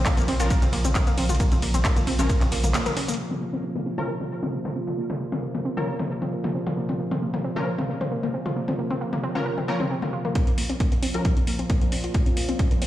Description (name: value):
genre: driving peak-time techno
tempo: 134 BPM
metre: 4/4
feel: straight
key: Bb minor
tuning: A4 = 440 Hz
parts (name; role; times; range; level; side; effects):
- warm sub bass; bass; 0.0-2.7 s; Bb1; -24 LUFS; equal; overdrive, sidechain pumping, low-pass filter
- analog drone; drone; 0.0-12.9 s; Bb2 to F3; -32 LUFS; equal; chorus, sidechain pumping
- warbly dusty pluck; riff; 0.1-12.9 s; Bb3 to Bb4; -29 LUFS; equal; chorus, tube saturation, sidechain pumping, dub echo
- electronic kick drum; drums; 0.1-2.4, 10.4-12.7 s; none; -22 LUFS; equal; none
- techno drum kit; drums; 0.1-12.9 s; handclaps, hi-hat, ride cymbal, shaker, toms; -29 LUFS; equal; low-pass filter on hats, low-pass filter on cymbals, low-pass filter on perc, low-pass filter on toms, low-pass filter on snare, low-pass filter on room
- rave stab; stabs; 0.4-11.2 s; F3 to Bb4; -32 LUFS; left 1 dB; chorus, built-in reverb, sidechain pumping, dub echo
room: light reverb, digital ambience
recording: played on a big sound system in a bare room, large studio reverb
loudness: -22 LUFS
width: side -13 dB against mid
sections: 0.0-3.2 A section; 3.2-10.4 B section; 10.4-12.9 C section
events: drop 0.0-3.2; break 2.7-3.2; band accent 2.7; filter sweep on synth arpeggio sound 3.2-10.4, 10.4-12.9; filter sweep on synth stab 3.2-10.4, 10.4-12.9; build-up 10.4-12.9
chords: 0.0 Bbm; 10.4 Bb5